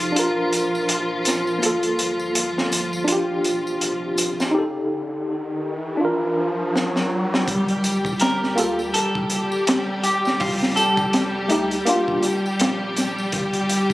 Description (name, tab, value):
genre	trip hop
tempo	82 BPM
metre	4/4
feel	swing 57% on 16ths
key	unclear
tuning	A4 = 440 Hz
part	tine electric piano	accompaniment	0.0-12.2 s	A3 to Bb4	-23 LUFS	equal	medium stereo tremolo, vintage 12-bit sampler grit, tape echo
part	rich studio string section	sustained chords	0.0-13.9 s	F3 to G4	-24 LUFS	equal	none
part	soft dub sub bass	bass	0.0-13.9 s	Eb1 to D2	-39 LUFS	equal	tube saturation
part	crunchy breakbeat drum kit	drums	0.0-13.9 s	hi-hat, kick drum, snare drum	-23 LUFS	equal	high-pass filter on kick, high-pass filter on hats, high-pass filter on snare, high-pass filter on room
part	tambourine	percussion	0.0-13.9 s	none	-34 LUFS	right 1 dB	none
part	riser	sound effects	3.9-7.5 s	none	-28 LUFS	equal	none
part	clean electric guitar	melody	8.2-12.2 s	F4 to Bb4	-24 LUFS	equal	tape echo
room	light reverb, studio ambience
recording	recorded on a phone in the room, club reverb, compression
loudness	-19 LUFS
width	side -17 dB against mid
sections	0.0-7.5 A section; 7.5-13.9 B section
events	riser 3.9-7.5; drum fill 6.7-7.5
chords	0.2 Bb; 1.6 Gm7; 3.1 Ebmaj7; 4.5 Eb; 6.0 Bb; 7.5 Gm7; 8.9 Eb; 10.4 F7; 11.9 Bb; 13.3 N.C.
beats	0.16 0.89 | 1.62 2.35 3.08 3.81 | 4.55 5.28 6.01 6.74 | 7.47 8.21 8.94 9.67 | 10.40 11.13 11.86 12.60 | 13.33